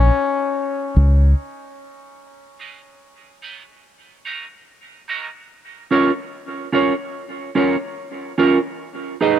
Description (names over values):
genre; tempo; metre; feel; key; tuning
dub reggae; 73 BPM; 4/4; straight; G# dorian; A4 = 440 Hz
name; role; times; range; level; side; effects
bright trombone; melody; 0.0-1.4 s; C#4; -23 LUFS; left 5 dB; dub echo
deep dub fingered electric bass; bass; 0.0-1.3 s; C#2; -12 LUFS; equal; none
clean electric guitar; accompaniment; 2.6-9.4 s; C#4 to D#5; -19 LUFS; right 3 dB; lush chorus, high-pass filter, dub echo
room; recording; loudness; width
light reverb, studio ambience; dark, warm production; -17 LUFS; side -10 dB against mid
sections
0.0-2.2 A section; 2.2-9.4 B section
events
break 0.0-2.2, 2.2-9.4; filter sweep on clean electric guitar 0.0-5.5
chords
0.0 N.C.; 2.2 G#m; 3.8 D#m; 5.5 A#m; 8.8 G#m